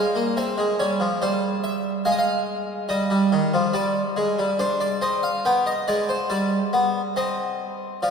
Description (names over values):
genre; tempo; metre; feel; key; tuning
classical, baroque-style two-part invention for harpsichord; 70 BPM; 3/4; straight; unclear; A4 = 440 Hz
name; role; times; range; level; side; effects
harpsichord; solo; 0.0-8.1 s; Eb3 to G5; -20 LUFS; equal; none
room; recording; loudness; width
wet cathedral reverb, RT60 4.2 s; recorded in a church or concert hall; -20 LUFS; side -6 dB against mid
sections
0.0-8.0 A section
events
none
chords
0.4 C; 2.1 Fm/Ab; 2.9 Ebmaj9; 4.6 Cmadd9; 5.4 G; 7.2 Cm